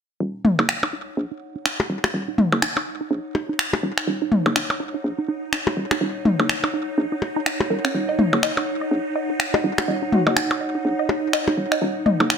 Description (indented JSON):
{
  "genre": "minimal techno",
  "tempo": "124 BPM",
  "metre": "4/4",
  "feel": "swing 59% on 16ths",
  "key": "Eb minor",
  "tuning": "A4 = 440 Hz",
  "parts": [
    { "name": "resonant blip pluck", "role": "riff", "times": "0.2-12.2 s", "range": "Db4 to Eb5", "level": "-26 LUFS", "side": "right 2 dB", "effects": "phaser, vintage 12-bit sampler grit, dub echo" },
    { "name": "hollow knocking FM bass", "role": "bass", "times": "0.2-12.4 s", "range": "Eb1 to Db2", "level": "-25 LUFS", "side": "equal", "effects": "high-pass filter" },
    { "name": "swarming drone", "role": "texture", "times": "1.5-12.4 s", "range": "Eb4", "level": "-32 LUFS", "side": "right 3 dB", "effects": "built-in reverb" },
    { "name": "warbly tape-like pad", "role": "texture", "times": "1.0-12.4 s", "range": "Eb4 to Gb5", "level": "-29 LUFS", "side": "equal", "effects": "chorus, built-in reverb" },
    { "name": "electronic toms and percussion blips", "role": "percussion", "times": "0.4-12.3 s", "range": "none", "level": "-22 LUFS", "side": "left 1 dB", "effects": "small room reverb, digital delay" },
    { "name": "electronic finger snaps", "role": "drums", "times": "0.7-12.4 s", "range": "none", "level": "-24 LUFS", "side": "equal", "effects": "small room reverb" },
    { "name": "breathy flute-like synth lead", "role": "melody", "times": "10.1-10.3 s", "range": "Gb4", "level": "-28 LUFS", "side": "left 3 dB", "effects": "ensemble chorus, digital delay" }
  ],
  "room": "moderate digital room reverb, RT60 1.2 s",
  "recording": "none",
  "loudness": "-20 LUFS",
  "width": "side -7 dB against mid",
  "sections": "0.2-12.4 A section",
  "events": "filter sweep on synth arpeggio sound 0.2-12.4",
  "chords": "0.2 Ebm7"
}